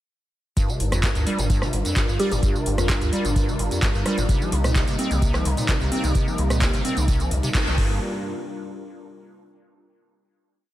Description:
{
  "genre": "acid house",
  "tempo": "129 BPM",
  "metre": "4/4",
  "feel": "straight",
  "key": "G minor",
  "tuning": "A4 = 440 Hz",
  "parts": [
    { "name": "warm analog pad", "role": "sustained chords", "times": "0.6-8.0 s", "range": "C3 to Bb4", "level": "-29 LUFS", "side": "equal", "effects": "chorus, sidechain pumping" },
    { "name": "liquid acid bass", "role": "riff", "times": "0.6-8.0 s", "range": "C2 to Eb4", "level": "-27 LUFS", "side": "equal", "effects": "tube saturation, lush chorus, sidechain pumping, analog delay" },
    { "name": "electro analog drum machine", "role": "drums", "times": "0.6-7.9 s", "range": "crash cymbal, handclaps, hi-hat, rim click, tambourine", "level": "-28 LUFS", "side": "equal", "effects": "overdrive" },
    { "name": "electronic kick drum", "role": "drums", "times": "0.6-7.9 s", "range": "none", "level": "-23 LUFS", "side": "equal", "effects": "overdrive" },
    { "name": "jazz brush drum kit", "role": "drums", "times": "0.6-7.7 s", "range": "hi-hat, snare drum", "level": "-38 LUFS", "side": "right 2 dB", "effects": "none" },
    { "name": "warm sub bass", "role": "bass", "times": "0.8-8.0 s", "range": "G1 to D2", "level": "-25 LUFS", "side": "equal", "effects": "tube saturation, sidechain pumping" },
    { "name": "mallet-like synth pluck", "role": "melody", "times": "2.2-3.4 s", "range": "F4 to G4", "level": "-30 LUFS", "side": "right 2 dB", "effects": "chorus, phaser, vintage 12-bit sampler grit, analog delay" }
  ],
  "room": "moderate lush hall reverb, RT60 1.8 s, digital ambience",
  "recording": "dreamy mix soaked in reverb",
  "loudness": "-20 LUFS",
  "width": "side -14 dB against mid",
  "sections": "0.6-8.0 drop; 8.0-9.9 final hit",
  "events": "drop 0.6-8.0; band accent 7.5",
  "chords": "0.6 Gm7; 4.3 Cm7; 7.8 Gm7; 8.0 N.C.",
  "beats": "| 0.57 1.03 1.50 1.96 | 2.43 2.89 3.36 3.82 | 4.29 4.75 5.22 5.68 | 6.15 6.61 7.08 7.54"
}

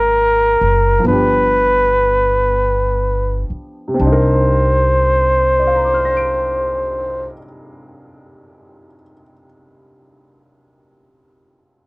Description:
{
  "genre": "jazz ballad",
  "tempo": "38-45 BPM",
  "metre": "4/4",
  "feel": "swing 68% on 8ths",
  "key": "C minor",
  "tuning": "A4 = 442 Hz",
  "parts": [
    { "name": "dark trumpet", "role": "melody", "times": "0.0-7.3 s", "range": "Bb4 to C5", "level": "-14 LUFS", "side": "equal", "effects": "cassette tape" },
    { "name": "warm upright piano", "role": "accompaniment", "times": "0.0-11.9 s", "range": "C3 to D7", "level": "-23 LUFS", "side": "equal", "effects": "cassette tape" },
    { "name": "upright bass", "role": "bass", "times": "0.0-7.3 s", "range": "Gb1 to C2", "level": "-19 LUFS", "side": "equal", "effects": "none" }
  ],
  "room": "little or no reverb",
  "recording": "home recording on cassette",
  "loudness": "-12 LUFS",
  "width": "side -29 dB against mid",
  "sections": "0.0-4.0 A section; 4.0-10.3 B section",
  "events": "slowing down 0.0-4.0",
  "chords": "0.0 Ab9; 1.0 G7; 4.0 Cm9",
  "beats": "1.04 2.46 | 3.99 5.58 7.15 8.72"
}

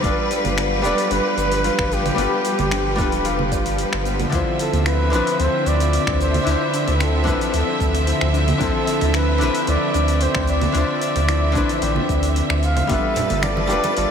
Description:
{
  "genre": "sunset chillout",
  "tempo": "112 BPM",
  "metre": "4/4",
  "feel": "straight",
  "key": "D dorian",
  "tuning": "A4 = 440 Hz",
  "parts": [
    { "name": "breathy flugelhorn", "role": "melody", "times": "0.0-14.1 s", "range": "G4 to F5", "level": "-24 LUFS", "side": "equal", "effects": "ping-pong delay" },
    { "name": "archtop guitar, miked and amplified", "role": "accompaniment", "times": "0.0-14.1 s", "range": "D3 to C5", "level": "-25 LUFS", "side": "moving between left 5 dB and right 2 dB", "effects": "auto-pan, analog delay" },
    { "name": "clear symphonic string section", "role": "sustained chords", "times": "0.0-14.1 s", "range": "D3 to E5", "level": "-24 LUFS", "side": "equal", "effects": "none" },
    { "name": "concert harp", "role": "arpeggios", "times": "0.0-14.1 s", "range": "B3 to D5", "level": "-28 LUFS", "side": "left 4 dB", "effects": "analog delay" },
    { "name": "warm sub bass", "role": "bass", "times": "0.0-14.1 s", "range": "D1 to D2", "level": "-22 LUFS", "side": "equal", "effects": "none" },
    { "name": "deep house drum kit", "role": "drums", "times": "0.0-14.1 s", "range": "congas, finger snaps, hi-hat, shaker", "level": "-27 LUFS", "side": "right 3 dB", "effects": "overdrive, small room ambience" },
    { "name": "electronic kick drum", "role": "drums", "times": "0.0-13.0 s", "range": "none", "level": "-26 LUFS", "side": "right 1 dB", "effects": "overdrive, small room ambience" },
    { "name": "congas", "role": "percussion", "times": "12.9-13.9 s", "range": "none", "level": "-29 LUFS", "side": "right 3 dB", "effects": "none" },
    { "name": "twinkling granular texture", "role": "texture", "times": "13.0-14.1 s", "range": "A5", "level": "-32 LUFS", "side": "equal", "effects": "built-in reverb" }
  ],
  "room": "wet huge ambient reverb, RT60 7.7 s",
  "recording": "dreamy mix soaked in reverb",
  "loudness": "-17 LUFS",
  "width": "side -7 dB against mid",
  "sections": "0.0-14.1 A section",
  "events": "none",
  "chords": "0.0 G9; 4.3 Dm9; 12.9 G9",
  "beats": "| 0.04 0.57 1.11 1.64 | 2.18 2.71 3.25 3.79 | 4.32 4.86 5.39 5.93 | 6.46 7.00 7.54 8.07 | 8.61 9.14 9.68 10.21 | 10.75 11.29 11.82 12.36 | 12.89 13.43 13.96"
}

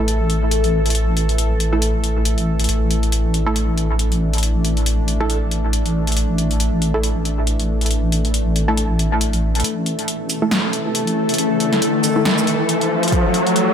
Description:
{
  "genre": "deep dubstep",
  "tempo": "138 BPM",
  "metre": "4/4",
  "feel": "swing 57% on 16ths, half-time",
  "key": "unclear",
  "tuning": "A4 = 438 Hz",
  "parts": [
    { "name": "bowed-like drone", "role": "sustained chords", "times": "0.0-13.7 s", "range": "E3 to A4", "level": "-22 LUFS", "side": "left 2 dB", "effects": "built-in reverb" },
    { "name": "filtered dub chord stab", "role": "stabs", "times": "0.0-12.3 s", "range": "A3 to A4", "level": "-25 LUFS", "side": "right 1 dB", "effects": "chorus, dub echo" },
    { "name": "deep soft wobble bass", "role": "bass", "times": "0.0-13.7 s", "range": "E1 to A1", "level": "-20 LUFS", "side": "equal", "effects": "chorus, high-pass filter" },
    { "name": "deep house drum kit", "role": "drums", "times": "0.1-13.7 s", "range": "hi-hat, shaker, snare drum", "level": "-23 LUFS", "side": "left 1 dB", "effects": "overdrive" },
    { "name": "breathy flute-like synth lead", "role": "melody", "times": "5.2-5.4 s", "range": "A4", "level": "-37 LUFS", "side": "right 4 dB", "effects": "none" },
    { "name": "riser", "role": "sound effects", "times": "10.7-13.7 s", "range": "none", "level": "-21 LUFS", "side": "equal", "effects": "none" },
    { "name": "electronic kick drum", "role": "drums", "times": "13.1-13.2 s", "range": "none", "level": "-18 LUFS", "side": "equal", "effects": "overdrive" }
  ],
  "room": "light reverb, digital ambience",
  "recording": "none",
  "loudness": "-16 LUFS",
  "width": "side -8 dB against mid",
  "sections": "0.0-9.6 A section; 9.6-13.7 B section",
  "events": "build-up 9.6-13.7; riser 10.7-13.7",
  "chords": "0.0 A5",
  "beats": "0.08 0.52 | 0.95 1.38 1.82 2.25 | 2.69 3.12 3.56 3.99 | 4.43 4.86 5.30 5.73 | 6.17 6.60 7.04 7.47 | 7.91 8.34 8.78 9.21 | 9.64 10.08 10.52 10.95 | 11.38 11.82 12.25 12.69 | 13.12 13.56"
}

